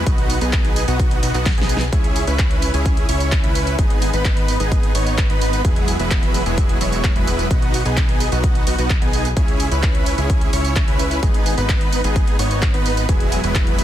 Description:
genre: EDM, festival progressive house.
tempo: 129 BPM.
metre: 4/4.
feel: straight.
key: C# minor.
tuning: A4 = 440 Hz.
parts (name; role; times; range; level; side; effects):
big supersaw lead; riff; 0.0-13.8 s; F#3 to C#5; -21 LUFS; right 1 dB; sidechain pumping, dub echo.
fat analog bass; bass; 0.0-13.8 s; E1 to C#2; -23 LUFS; equal; sidechain pumping.
big-room dance drum kit; drums; 0.1-13.8 s; handclaps, hi-hat, snare drum, tambourine; -26 LUFS; equal; none.
electronic kick drum; drums; 0.1-13.6 s; none; -18 LUFS; equal; none.
room: little or no reverb.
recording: dense, heavily limited modern master.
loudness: -15 LUFS.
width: side -12 dB against mid.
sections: 0.0-13.8 A section.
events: drum fill 1.5-1.9.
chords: 0.1 B; 1.9 C#m; 3.8 G#m; 5.6 Eadd9; 7.5 B; 9.4 C#m; 11.2 G#m; 13.1 Eadd9.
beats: | 0.07 0.53 0.99 1.46 | 1.93 2.39 2.86 3.32 | 3.79 4.25 4.72 5.18 | 5.65 6.11 6.58 7.04 | 7.51 7.97 8.44 8.90 | 9.37 9.83 10.30 10.76 | 11.23 11.69 12.16 12.62 | 13.09 13.55.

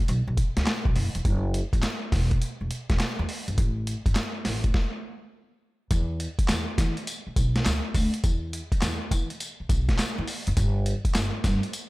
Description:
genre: R&B, new jack swing.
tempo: 103 BPM.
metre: 4/4.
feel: swing 65% on 16ths.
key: E minor.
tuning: A4 = 438 Hz.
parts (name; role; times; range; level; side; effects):
upright bass; bass; 0.1-11.6 s; E1 to E3; -27 LUFS; equal; none.
boom bap sampler-style drum kit; drums; 0.1-11.9 s; handclaps, hi-hat, kick drum, snare drum, tambourine; -25 LUFS; equal; none.
room: little or no reverb.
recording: none.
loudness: -24 LUFS.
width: side -20 dB against mid.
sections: 0.0-5.9 A section; 5.9-11.9 B section.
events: stop 4.7-5.9.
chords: none.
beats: 0.08 0.67 | 1.25 1.83 2.41 3.00 | 3.58 4.16 4.74 5.33 | 5.91 6.49 7.07 7.66 | 8.24 8.82 9.40 9.99 | 10.57 11.15 11.73.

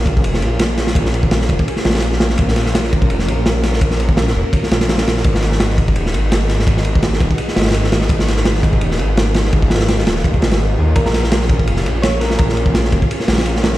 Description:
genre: drum and bass, jungle.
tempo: 168 BPM.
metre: 4/4.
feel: swing 54% on 16ths.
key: Bb phrygian.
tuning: A4 = 436 Hz.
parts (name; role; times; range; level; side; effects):
soft string machine; sustained chords; 0.0-13.8 s; Bb3 to Bb4; -24 LUFS; equal; ensemble chorus.
detuned saw bass; bass; 0.0-13.8 s; Eb1 to Eb2; -17 LUFS; equal; none.
crunchy breakbeat drum kit; drums; 0.1-13.8 s; kick drum, ride cymbal, snare drum; -16 LUFS; equal; none.
thumb-piano-like synth pluck; melody; 11.0-12.9 s; Bb4 to Db5; -24 LUFS; right 2 dB; chorus, dub echo.
room: small room ambience.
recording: played on a big sound system in a bare room, stone room reverb.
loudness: -13 LUFS.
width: side -15 dB against mid.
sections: 0.0-13.8 A section.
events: none.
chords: 0.0 Bbm7; 5.2 Abm7; 11.0 Bbm7.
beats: 0.24 0.60 | 0.96 1.31 1.67 2.03 | 2.39 2.74 3.10 3.46 | 3.81 4.17 4.53 4.89 | 5.24 5.60 5.96 6.31 | 6.67 7.03 7.39 7.74 | 8.10 8.46 8.81 9.17 | 9.53 9.89 10.24 10.60 | 10.96 11.31 11.67 12.03 | 12.39 12.74 13.10 13.46.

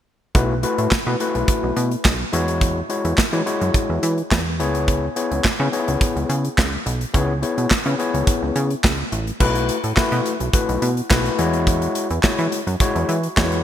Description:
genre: early-eighties boogie funk.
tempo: 106 BPM.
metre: 4/4.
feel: straight.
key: unclear.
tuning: A4 = 441 Hz.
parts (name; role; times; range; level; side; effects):
overdriven tine electric piano; accompaniment; 0.3-13.6 s; G#3 to C#5; -22 LUFS; left 3 dB; none.
plucky analog bass; bass; 0.3-13.6 s; A1 to E3; -22 LUFS; right 1 dB; none.
modern studio drum kit; drums; 0.3-13.6 s; crash cymbal, handclaps, hi-hat, kick drum, snare drum; -21 LUFS; right 1 dB; none.
room: moderate lush hall reverb, RT60 1.9 s, studio reverb.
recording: bright 1980s-style digital production.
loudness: -18 LUFS.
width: side -10 dB against mid.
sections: 0.3-9.4 A section; 9.4-13.6 B section.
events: tine electric piano fill 13.1-13.6.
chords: 0.3 B7sus4; 2.3 E69; 4.6 C#m7; 9.4 B7sus4; 11.4 E69.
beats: | 0.35 0.92 1.48 2.05 | 2.61 3.18 3.75 4.31 | 4.88 5.44 6.01 6.58 | 7.14 7.71 8.27 8.84 | 9.41 9.97 10.54 11.10 | 11.67 12.24 12.80 13.37.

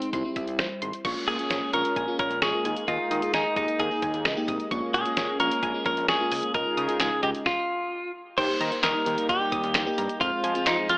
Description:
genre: synth-pop.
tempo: 131 BPM.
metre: 4/4.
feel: straight.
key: unclear.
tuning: A4 = 444 Hz.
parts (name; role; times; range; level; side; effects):
direct-recorded clean electric guitar; melody; 0.0-11.0 s; Eb4 to C5; -26 LUFS; equal; wide subtle chorus.
FM electric piano with soft pad layer; accompaniment; 0.0-11.0 s; G3 to Bb4; -33 LUFS; equal; chorus, phaser.
resonant blip pluck; arpeggios; 0.0-11.0 s; C5 to F6; -33 LUFS; right 1 dB; chorus.
detuned 8-bit digital drum machine; drums; 0.0-11.0 s; crash cymbal, handclaps, hi-hat, kick drum, snare drum; -29 LUFS; equal; none.
fat analog bass; bass; 0.1-11.0 s; Ab1 to F3; -33 LUFS; equal; none.
brassy analog pad; sustained chords; 1.0-11.0 s; Db3 to C5; -33 LUFS; equal; chorus.
room: moderate plate reverb, RT60 1.6 s, digital ambience.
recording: AM radio sound.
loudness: -23 LUFS.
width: side -25 dB against mid.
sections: 0.0-1.0 A section; 1.0-8.4 B section; 8.4-11.0 C section.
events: stop 7.5-8.4.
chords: 0.1 C; 1.0 Bbm7; 2.7 Ebsus4; 4.7 Bbm7; 6.5 Dbadd9; 8.4 Eb; 10.2 Fm.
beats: 0.13 0.59 | 1.05 1.51 1.96 2.42 | 2.88 3.34 3.80 4.25 | 4.71 5.17 5.63 6.09 | 6.54 7.00 7.46 7.92 | 8.38 8.83 9.29 9.75 | 10.21 10.67.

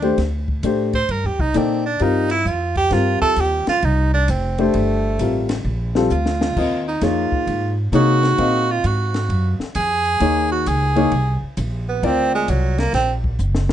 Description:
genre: modal jazz.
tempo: 132 BPM.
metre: 4/4.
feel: swing 66% on 8ths.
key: unclear.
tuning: A4 = 439 Hz.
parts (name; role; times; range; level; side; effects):
breathy tenor saxophone; second line; 0.0-13.1 s; F#3 to C5; -20 LUFS; right 4 dB; none.
warm baby grand piano; accompaniment; 0.0-13.3 s; G3 to F5; -20 LUFS; left 4 dB; none.
upright bass; bass; 0.0-13.7 s; F1 to C3; -21 LUFS; equal; none.
compact cocktail drum kit; drums; 0.0-13.7 s; crash cymbal, hi-hat, kick drum, ride cymbal, snare drum; -28 LUFS; left 2 dB; none.
room: light reverb.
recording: dark, warm production, nothing above 10.3 kHz.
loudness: -16 LUFS.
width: side -10 dB against mid.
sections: 0.0-13.7 A section.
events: tenor saxophone solo 0.0-13.7; drum fill 6.1-6.6, 13.4-13.7.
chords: 0.0 Cm11; 6.6 Ebm11; 12.0 D7alt.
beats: 0.18 0.64 | 1.10 1.55 2.01 2.46 | 2.92 3.38 3.83 4.29 | 4.74 5.20 5.65 6.11 | 6.56 7.02 7.47 7.93 | 8.38 8.84 9.30 9.75 | 10.21 10.66 11.12 11.57 | 12.03 12.48 12.94 13.39.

